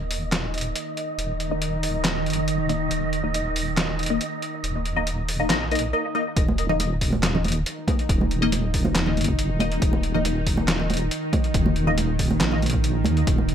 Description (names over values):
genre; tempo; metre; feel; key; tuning
deep dubstep; 139 BPM; 4/4; half-time; Eb minor; A4 = 440 Hz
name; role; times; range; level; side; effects
bowed-like drone; sustained chords; 0.0-13.5 s; Eb3 to Eb4; -29 LUFS; right 2 dB; built-in reverb
deep soft wobble bass; bass; 0.0-13.5 s; Eb1 to Eb2; -26 LUFS; equal; chorus
wind-like tuned noise texture; texture; 0.0-5.9 s; Eb5; -32 LUFS; right 3 dB; built-in reverb
trip hop sampler-style drum kit; drums; 0.1-13.5 s; handclaps, hi-hat, snare drum; -27 LUFS; equal; overdrive, small room ambience
filtered dub chord stab; stabs; 1.5-12.0 s; Bb3 to Eb5; -27 LUFS; left 3 dB; phaser, analog chorus, dub echo
electronic kick drum; drums; 6.4-13.4 s; none; -24 LUFS; equal; small room ambience
congas; percussion; 6.5-13.5 s; none; -28 LUFS; right 2 dB; dub echo
room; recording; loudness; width
light reverb, digital ambience; none; -21 LUFS; side -9 dB against mid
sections
0.0-6.4 A section; 6.4-13.5 B section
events
build-up 0.0-6.4; filter sweep on synth stab 0.0-6.4; break 5.9-6.4; drop 6.4-13.5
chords
0.0 Eb5